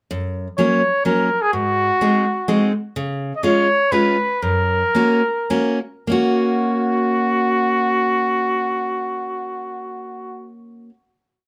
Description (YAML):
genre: alpine folk, alpine dance band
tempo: 98-127 BPM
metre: 3/4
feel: swing 53% on 8ths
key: F# major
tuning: A4 = 440 Hz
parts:
  - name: fingerpicked steel-string acoustic guitar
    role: accompaniment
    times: 0.1-10.9 s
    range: F#2 to F#4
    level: -23 LUFS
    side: equal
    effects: none
  - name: clear flugelhorn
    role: melody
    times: 0.6-10.5 s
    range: F#4 to D#5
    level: -21 LUFS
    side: equal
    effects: plate reverb
room: light reverb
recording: close, detailed microphones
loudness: -19 LUFS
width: mono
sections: 0.1-6.1 A section; 6.1-9.7 final chord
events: slowing down 3.0-6.1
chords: 0.1 F#; 1.5 G#7; 3.0 C#7; 4.4 F#